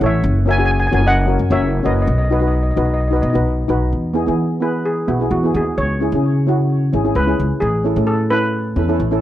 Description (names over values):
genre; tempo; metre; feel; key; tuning
calypso; 130 BPM; 4/4; straight; E major; A4 = 440 Hz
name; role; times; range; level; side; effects
steel pan; melody; 0.0-9.0 s; E4 to G#5; -21 LUFS; equal; tape echo
steel pan; accompaniment; 0.0-9.2 s; B3 to B4; -20 LUFS; left 1 dB; none
upright bass; bass; 0.0-9.2 s; F#1 to E3; -18 LUFS; equal; none
room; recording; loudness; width
light reverb; dry, close 1970s-style studio recording; -15 LUFS; side -13 dB against mid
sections
0.0-3.9 A section; 3.9-9.2 B section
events
steel pan solo 3.9-9.2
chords
0.3 F#7; 2.1 B; 3.9 E; 5.8 C#m7; 7.6 Aadd9